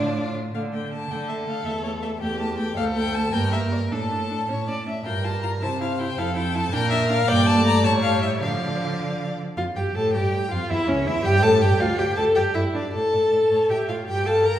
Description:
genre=quick classical-period movement for string quartet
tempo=107 BPM (dotted quarters)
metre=6/8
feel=straight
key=D minor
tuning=A4 = 440 Hz
part: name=warm violin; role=melody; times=0.0-14.6 s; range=C#4 to Bb5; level=-29 LUFS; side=left 4 dB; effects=none
part: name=rich violin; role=second line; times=0.0-14.6 s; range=F4 to Bb5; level=-28 LUFS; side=left 1 dB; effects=none
part: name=clear viola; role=accompaniment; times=0.0-14.6 s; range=F3 to Bb4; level=-24 LUFS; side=equal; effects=none
part: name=rich cello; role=bass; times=0.0-14.6 s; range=C#2 to D3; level=-26 LUFS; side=right 2 dB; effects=none
room=wet recital hall reverb, RT60 1.5 s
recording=heard from further back in the room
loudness=-20 LUFS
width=side -11 dB against mid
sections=0.5-9.6 A section; 9.6-14.6 A section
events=none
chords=0.0 Dm; 0.5 D5; 1.7 A5/E; 2.8 D5; 3.3 Gm; 3.9 D5/A; 4.5 A; 5.1 Gm7; 5.6 C; 6.2 Fmaj7; 6.7 Bb; 7.3 Gm; 7.8 A7; 8.4 Dm; 9.6 Fadd9; 10.7 A7; 11.8 Dmadd11; 12.4 G5; 12.9 D5/A; 13.5 A; 14.1 Gm9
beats=| 0.55 1.11 | 1.66 2.22 | 2.77 3.33 | 3.92 4.49 | 5.06 5.62 | 6.17 6.73 | 7.28 7.84 | 8.42 9.00 | 9.58 10.14 | 10.70 11.25 | 11.81 12.37 | 12.94 13.51 | 14.08

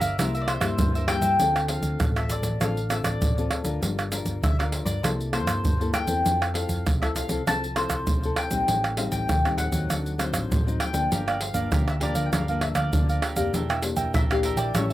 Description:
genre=samba and choro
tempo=99 BPM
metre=4/4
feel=straight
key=D minor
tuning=A4 = 441 Hz
part: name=mandolin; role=melody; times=0.0-14.8 s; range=C5 to A5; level=-29 LUFS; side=left 2 dB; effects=slapback echo
part: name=cavaquinho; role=accompaniment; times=0.0-1.4, 11.1-14.9 s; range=D4 to G5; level=-30 LUFS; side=right 5 dB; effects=slapback echo
part: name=nylon-string guitar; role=accompaniment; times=0.0-14.9 s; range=G2 to Bb4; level=-31 LUFS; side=left 4 dB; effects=slapback echo
part: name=hollow-body short-scale picked electric bass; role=bass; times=0.0-14.9 s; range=E1 to G2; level=-29 LUFS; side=equal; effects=none
part: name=egg shaker, surdo, pandeiro and tamborim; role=percussion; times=0.0-14.9 s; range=none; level=-26 LUFS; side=right 1 dB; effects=none
room=little or no reverb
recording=recorded outdoors, with no room sound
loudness=-22 LUFS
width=side -14 dB against mid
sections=0.0-1.4 A section; 1.4-14.9 B section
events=none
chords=0.2 C7; 1.4 Dm7; 3.8 Gm7; 5.0 C6; 6.2 Fmaj7; 8.7 Am7b5; 9.9 D7b9; 11.1 Gm7; 13.5 Em7b5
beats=0.18 0.78 | 1.39 2.00 2.60 3.21 | 3.82 4.43 5.03 5.64 | 6.25 6.86 7.46 8.07 | 8.68 9.29 9.89 10.50 | 11.11 11.72 12.32 12.93 | 13.54 14.14 14.75

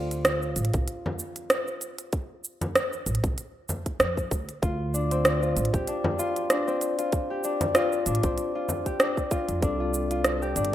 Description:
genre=organic downtempo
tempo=96 BPM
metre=4/4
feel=swing 56% on 16ths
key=D minor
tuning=A4 = 439 Hz
part: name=Celtic harp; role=arpeggios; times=0.0-10.7 s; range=C4 to G4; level=-28 LUFS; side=left 2 dB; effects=tape echo
part: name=upright bass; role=bass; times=0.0-10.7 s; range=G1 to F2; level=-28 LUFS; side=right 1 dB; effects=none
part: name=organic electronic drum kit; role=drums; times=0.1-10.7 s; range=hi-hat, rim click, shaker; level=-26 LUFS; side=right 1 dB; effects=none
part: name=electronic kick drum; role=drums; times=0.7-9.8 s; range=none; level=-29 LUFS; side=equal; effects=none
part: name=frame drum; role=percussion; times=1.1-8.8 s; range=none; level=-32 LUFS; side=left 1 dB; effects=none
part: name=bell-like tine electric piano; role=accompaniment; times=9.6-10.7 s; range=G3 to A4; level=-36 LUFS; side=left 1 dB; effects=fast stereo tremolo, sidechain pumping, tape echo
room=moderate lush hall reverb, RT60 1.8 s, small room ambience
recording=rough home demo mix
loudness=-24 LUFS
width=side -12 dB against mid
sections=0.0-10.7 A section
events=none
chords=0.0 Dm7; 9.6 Csus4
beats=0.25 0.88 1.50 | 2.13 2.75 3.38 4.00 | 4.63 5.25 5.88 6.50 | 7.13 7.75 8.38 9.00 | 9.63 10.25

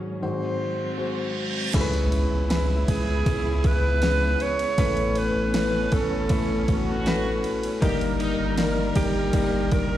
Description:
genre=pop ballad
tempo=79 BPM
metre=4/4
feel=straight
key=C# minor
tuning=A4 = 443 Hz
part: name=felt-muted upright piano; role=accompaniment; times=0.0-10.0 s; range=G#1 to C#5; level=-27 LUFS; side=left 3 dB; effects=plate reverb, slapback echo
part: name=dark symphonic string section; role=sustained chords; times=0.0-10.0 s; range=G#2 to A#4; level=-31 LUFS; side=right 1 dB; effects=plate reverb
part: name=clear alto saxophone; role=melody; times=0.2-10.0 s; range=G4 to C#5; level=-28 LUFS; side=right 2 dB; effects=plate reverb
part: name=reverse cymbal and impact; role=sound effects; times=0.6-4.8 s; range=none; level=-34 LUFS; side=right 2 dB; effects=none
part: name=saturated sub bass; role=bass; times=1.7-10.0 s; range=G1 to C#2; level=-27 LUFS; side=equal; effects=none
part: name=smooth R&B drum kit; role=drums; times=1.7-9.9 s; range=crash cymbal, kick drum, ride cymbal, snare drum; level=-27 LUFS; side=equal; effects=overdrive
part: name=muted French horn section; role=second line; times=6.7-8.7 s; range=D#4 to G4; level=-33 LUFS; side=right 1 dB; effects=plate reverb, slapback echo
room=light reverb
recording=live gig heard through the venue's PA, recital hall reverb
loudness=-21 LUFS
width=side -12 dB against mid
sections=0.0-1.7 A section; 1.7-10.0 B section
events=reverse cymbal 0.6-1.7; impact 1.7-4.8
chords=0.2 G#7; 1.7 C#m7; 4.8 Aadd9; 7.8 D#/G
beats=0.22 0.98 | 1.74 2.50 3.26 4.02 | 4.78 5.54 6.30 7.06 | 7.82 8.58 9.34

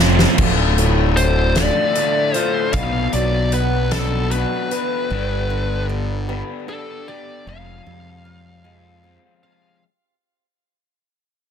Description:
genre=quiet-loud alternative rock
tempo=51 BPM (dotted quarters)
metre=6/8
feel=straight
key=D dorian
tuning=A4 = 440 Hz
part: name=crunchy overdriven guitar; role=riff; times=0.0-9.8 s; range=D2 to B4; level=-24 LUFS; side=left 14 dB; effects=none
part: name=fuzz fingered electric bass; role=bass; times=0.0-9.2 s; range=D1 to F2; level=-20 LUFS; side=right 1 dB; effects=overdrive
part: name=loose indie drum kit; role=drums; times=0.2-4.9 s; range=crash cymbal, hi-hat, kick drum, snare drum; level=-20 LUFS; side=equal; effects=none
part: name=picked swing-style acoustic guitar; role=arpeggios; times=0.4-9.8 s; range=D2 to B4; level=-27 LUFS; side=right 6 dB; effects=digital delay
part: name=fuzz lead guitar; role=melody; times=1.2-9.8 s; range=A4 to F5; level=-22 LUFS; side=left 1 dB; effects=distortion, digital delay
room=moderate studio ambience, RT60 0.4 s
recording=dense, heavily limited modern master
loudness=-16 LUFS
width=side -8 dB against mid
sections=0.4-9.8 A section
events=drum fill 0.0-0.4; fade-out 0.4-9.8; lead electric guitar solo 0.4-9.8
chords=0.4 Dm; 2.7 Bm; 5.1 G; 7.5 Fm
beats=| 0.39 1.57 | 2.75 3.92 | 5.11 6.29 | 7.47 8.65

